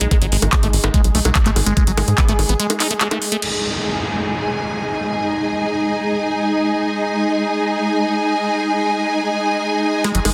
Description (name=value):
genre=psychedelic trance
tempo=145 BPM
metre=4/4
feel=straight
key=unclear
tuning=A4 = 440 Hz
part: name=swarming drone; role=sustained chords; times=0.0-10.3 s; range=G#3 to G#4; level=-25 LUFS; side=equal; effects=built-in reverb, sidechain pumping
part: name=liquid acid bass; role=riff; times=0.0-3.4, 10.0-10.3 s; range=F#3 to D#4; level=-26 LUFS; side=equal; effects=phaser, sidechain pumping, tape echo
part: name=tight sequencer bass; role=bass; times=0.0-2.6, 10.1-10.3 s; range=G#1 to G#2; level=-21 LUFS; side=equal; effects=none
part: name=garage drum kit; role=drums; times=0.0-3.5, 10.0-10.3 s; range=bongos, crash cymbal, handclaps, hi-hat, snare drum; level=-23 LUFS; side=equal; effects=none
part: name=electronic kick drum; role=drums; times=0.1-2.3 s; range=none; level=-19 LUFS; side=equal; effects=none
part: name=metallic wobble bass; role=second line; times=2.2-2.3 s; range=B3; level=-38 LUFS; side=equal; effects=none
part: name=downlifter and riser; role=sound effects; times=3.4-6.7, 10.0-10.3 s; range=none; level=-29 LUFS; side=equal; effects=none
part: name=warm studio string section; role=texture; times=3.4-10.3 s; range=D#4 to G#5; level=-22 LUFS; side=equal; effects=sidechain pumping
room=moderate plate reverb, RT60 1.0 s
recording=dense, heavily limited modern master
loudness=-18 LUFS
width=mono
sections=0.0-3.4 A section; 3.4-10.0 B section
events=filter sweep on synth drone 3.4-10.0; drum fill 10.0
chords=0.0 G#5